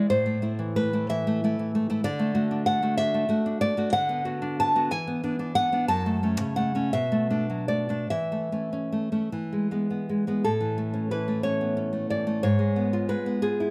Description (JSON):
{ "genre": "romantic piece for solo classical guitar", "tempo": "48-66 BPM (dotted quarters)", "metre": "6/8", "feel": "rubato", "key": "A major", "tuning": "A4 = 438 Hz", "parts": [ { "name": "nylon-string guitar", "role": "solo", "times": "0.0-13.7 s", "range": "F#2 to A5", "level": "-26 LUFS", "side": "equal", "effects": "none" } ], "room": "light reverb", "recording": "close, detailed microphones", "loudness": "-26 LUFS", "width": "mono", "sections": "0.0-10.4 A section; 10.4-13.7 B section", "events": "none", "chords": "0.1 Am; 2.0 D; 3.9 Bm/D; 4.9 E7; 5.9 F#m; 6.9 Bm7; 8.1 A/E; 9.3 E; 10.4 A; 12.4 C#7/G#", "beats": "| 0.11 1.11 | 2.05 2.98 | 3.94 4.91 | 5.89 6.92 | 8.08 9.31 | 10.44 11.44 | 12.43 13.41" }